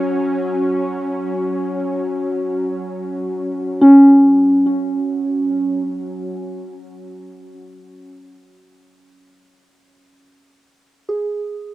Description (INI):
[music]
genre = ambient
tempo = free time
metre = none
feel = none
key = unclear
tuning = A4 = 440 Hz
[part]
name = bowed-like drone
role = drone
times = 0.0-6.0 s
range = F#3 to C#4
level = -23 LUFS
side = equal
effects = built-in reverb, cassette tape
[part]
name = soft synth bell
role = arpeggios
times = 3.8-11.7 s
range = C#4 to G#4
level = -12 LUFS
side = equal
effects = chorus, phaser, cassette tape, analog delay, plate reverb
[sound]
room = wet booth ambience, RT60 0.2 s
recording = home recording on cassette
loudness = -14 LUFS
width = side -17 dB against mid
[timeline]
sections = 0.0-5.9 A section; 5.9-11.7 B section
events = fade-in on synth bell 5.9-11.7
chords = 0.0 F#5; 5.9 N.C.